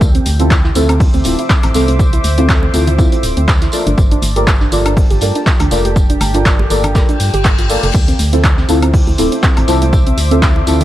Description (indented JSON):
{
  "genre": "deep house",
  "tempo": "121 BPM",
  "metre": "4/4",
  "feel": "swing 55% on 16ths",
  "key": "D minor",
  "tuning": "A4 = 440 Hz",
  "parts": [
    { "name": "deep dark ambient pad", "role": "sustained chords", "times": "0.0-10.8 s", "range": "G4 to D6", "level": "-24 LUFS", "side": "right 1 dB", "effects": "chorus, built-in reverb, sidechain pumping" },
    { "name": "organ-like FM bass", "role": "bass", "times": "0.0-10.8 s", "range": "D1 to G2", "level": "-15 LUFS", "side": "equal", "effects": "sidechain pumping" },
    { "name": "deep house drum kit", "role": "drums", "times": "0.0-10.8 s", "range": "cabasa, crash cymbal, handclaps, hi-hat, woodblock", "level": "-20 LUFS", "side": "equal", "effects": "overdrive" },
    { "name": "electronic kick drum", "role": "drums", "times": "0.0-10.5 s", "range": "none", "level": "-12 LUFS", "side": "equal", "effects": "overdrive" },
    { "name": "vintage brush drum kit", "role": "drums", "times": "0.0-10.8 s", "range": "hi-hat, snare drum, tambourine", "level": "-28 LUFS", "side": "equal", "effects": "sidechain pumping on hats, high-pass filter on hats, high-pass filter on snare, sidechain pumping on perc, high-pass filter on perc, high-pass filter on room" },
    { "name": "soft round pluck", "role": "arpeggios", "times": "0.1-10.8 s", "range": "C4 to A4", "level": "-23 LUFS", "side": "right 2 dB", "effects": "chorus, sidechain pumping, tape echo" },
    { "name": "congas", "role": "percussion", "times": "0.3-10.8 s", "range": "none", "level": "-26 LUFS", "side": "right 2 dB", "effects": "sidechain pumping on perc" },
    { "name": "deep mellow chord stab", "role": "stabs", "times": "0.4-10.8 s", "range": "C4 to D5", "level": "-17 LUFS", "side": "equal", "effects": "chorus, phaser, sidechain pumping, tape echo" },
    { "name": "reverse cymbal", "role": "sound effects", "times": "7.1-7.9 s", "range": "none", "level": "-25 LUFS", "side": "left 6 dB", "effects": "none" }
  ],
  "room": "studio ambience",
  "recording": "vinyl crackle",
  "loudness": "-10 LUFS",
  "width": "side -14 dB against mid",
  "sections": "0.0-10.8 A section",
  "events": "reverse cymbal 7.1-7.9",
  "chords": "0.0 Dm9; 3.7 Gm9; 7.9 Dm9"
}